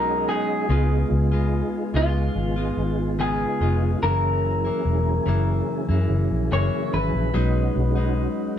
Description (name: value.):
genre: indie pop.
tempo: 72 BPM.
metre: 4/4.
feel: straight.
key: unclear.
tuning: A4 = 440 Hz.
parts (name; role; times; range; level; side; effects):
electric guitar through a small old amp; melody; 0.0-8.6 s; E#4 to C#5; -27 LUFS; left 1 dB; none.
direct-recorded clean electric guitar; accompaniment; 0.0-8.6 s; F#2 to E#4; -27 LUFS; left 3 dB; warbly pitch drift.
mellow tonewheel organ; accompaniment; 0.0-8.6 s; F#3 to D#5; -30 LUFS; right 5 dB; chorus vibrato, fast rotary speaker.
vintage muted fingered electric bass; bass; 0.0-8.3 s; E1 to F#2; -22 LUFS; equal; none.
room: light reverb.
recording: band playing live in one room.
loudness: -20 LUFS.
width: side -9 dB against mid.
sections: 0.0-8.6 A section.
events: none.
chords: 0.0 B6; 0.7 C#7; 4.0 F#7; 7.3 B6.